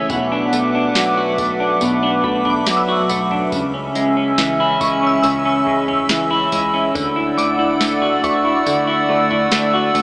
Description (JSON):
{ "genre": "dream pop", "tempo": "70 BPM", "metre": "4/4", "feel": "straight", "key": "unclear", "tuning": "A4 = 439 Hz", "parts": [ { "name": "hollow soft pad", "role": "sustained chords", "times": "0.0-10.0 s", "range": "C#4 to E6", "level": "-18 LUFS", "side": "equal", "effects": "chorus" }, { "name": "semi-hollow electric guitar", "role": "arpeggios", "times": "0.0-10.0 s", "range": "B2 to G#4", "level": "-18 LUFS", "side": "equal", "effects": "lush chorus, tape echo" }, { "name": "chorused synth bass", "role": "bass", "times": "0.0-10.0 s", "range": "B1 to D2", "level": "-29 LUFS", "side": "equal", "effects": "none" }, { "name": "shimmering bell with halo", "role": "texture", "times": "0.0-10.0 s", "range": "E5 to E6", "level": "-24 LUFS", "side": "equal", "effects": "ensemble chorus, phaser, tremolo, tape echo" }, { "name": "soft vintage rhythm box", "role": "drums", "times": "0.1-10.0 s", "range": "kick drum, snare drum, tambourine, toms", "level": "-22 LUFS", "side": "equal", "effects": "none" } ], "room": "moderate huge ambient reverb, RT60 5.1 s", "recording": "small speaker sound", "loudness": "-14 LUFS", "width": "side -25 dB against mid", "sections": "0.0-10.0 A section", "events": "none", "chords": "0.1 Bm7; 3.5 C#m; 7.0 Dadd9" }